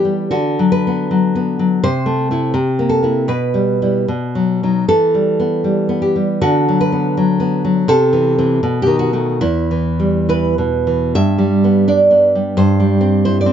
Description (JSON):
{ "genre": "romantic piece for solo classical guitar", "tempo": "67-89 BPM", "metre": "2/4", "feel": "rubato", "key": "E minor", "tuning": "A4 = 440 Hz", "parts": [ { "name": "nylon-string guitar", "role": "solo", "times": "0.0-13.5 s", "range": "E2 to E5", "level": "-13 LUFS", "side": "equal", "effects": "none" } ], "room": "little or no reverb", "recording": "nothing above 7.6 kHz", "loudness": "-13 LUFS", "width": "side -9 dB against mid", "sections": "0.0-11.2 A section; 11.2-13.5 B section", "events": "none", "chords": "0.3 Bm/D; 1.8 Am/C; 2.6 C7; 3.3 Em/B; 4.1 B; 4.9 Em; 6.4 Bm/D; 7.9 Am/C; 8.6 B7; 9.4 Em; 11.2 G; 12.6 C/G", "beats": "| 0.34 1.12 | 1.84 2.55 | 3.31 4.09 | 4.87 5.65 | 6.42 7.18 | 7.88 8.62 | 9.42 10.30 | 11.15 11.89 | 12.59 13.27" }